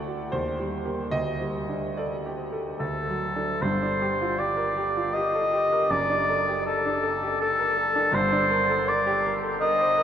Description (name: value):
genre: classical, romantic duo for oboe and grand piano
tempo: 70-84 BPM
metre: 3/4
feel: rubato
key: G minor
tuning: A4 = 441 Hz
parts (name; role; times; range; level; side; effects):
- bright concert grand piano; accompaniment; 0.0-10.0 s; F#1 to F#5; -28 LUFS; right 1 dB; none
- warm oboe; melody; 2.8-10.0 s; A4 to Eb5; -23 LUFS; left 1 dB; none
room: wet huge ambient reverb, RT60 8.0 s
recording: in a vast, echoing space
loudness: -23 LUFS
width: side -9 dB against mid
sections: 0.0-3.6 A section; 3.6-10.0 B section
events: none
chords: 0.3 Eb; 1.1 Dsus4; 2.8 D; 3.6 Gm; 5.9 D/F#; 8.1 Gm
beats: 0.33 | 1.13 1.98 2.81 | 3.63 4.39 5.14 | 5.90 6.65 7.40 | 8.14 8.88 9.62